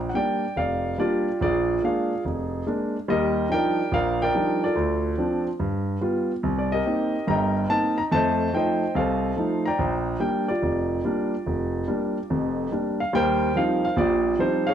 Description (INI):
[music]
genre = solo jazz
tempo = 143 BPM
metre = 4/4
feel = swing 66% on 8ths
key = Bb major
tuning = A4 = 441 Hz
[part]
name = warm grand piano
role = solo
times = 0.0-14.7 s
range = F1 to Bb5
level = -22 LUFS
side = equal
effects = none
[sound]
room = moderate large studio reverb, RT60 1.2 s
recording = dark, warm production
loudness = -22 LUFS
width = side -9 dB against mid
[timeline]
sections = 0.0-13.1 A section; 13.1-14.7 B section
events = none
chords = 0.0 Bb6; 1.4 Bb7; 3.1 Ebmaj9; 4.8 Dm7; 5.6 G7; 6.4 Cm7; 8.1 F7; 9.8 Bb6; 13.1 Eb69